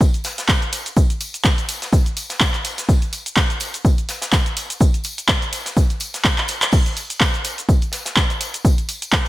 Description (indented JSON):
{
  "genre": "house",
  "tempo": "125 BPM",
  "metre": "4/4",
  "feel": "swing 56% on 16ths",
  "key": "none",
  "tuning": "none",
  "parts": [
    { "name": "electronic kick drum", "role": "drums", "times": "0.0-9.2 s", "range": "none", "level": "-16 LUFS", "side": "equal", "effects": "none" },
    { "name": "punchy analog drum machine", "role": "drums", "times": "0.0-9.3 s", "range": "crash cymbal, handclaps, hi-hat, shaker", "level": "-21 LUFS", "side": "equal", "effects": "gated reverb" },
    { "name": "tambourine and snare drum", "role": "drums", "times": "0.0-9.3 s", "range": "none", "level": "-31 LUFS", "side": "left 1 dB", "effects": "high-pass filter on snare, sidechain pumping on perc, high-pass filter on perc, high-pass filter on room, gated reverb" },
    { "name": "tambourine", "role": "percussion", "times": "0.0-9.3 s", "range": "none", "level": "-33 LUFS", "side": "left 3 dB", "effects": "none" }
  ],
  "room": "little or no reverb",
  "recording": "bright 1980s-style digital production",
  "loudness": "-17 LUFS",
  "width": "side -17 dB against mid",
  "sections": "0.0-9.3 A section",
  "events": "drum fill 6.4-6.7",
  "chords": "none",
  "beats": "0.01 0.49 | 0.97 1.45 1.93 2.41 | 2.89 3.37 3.85 4.33 | 4.81 5.29 5.77 6.25 | 6.73 7.21 7.69 8.17 | 8.65 9.13"
}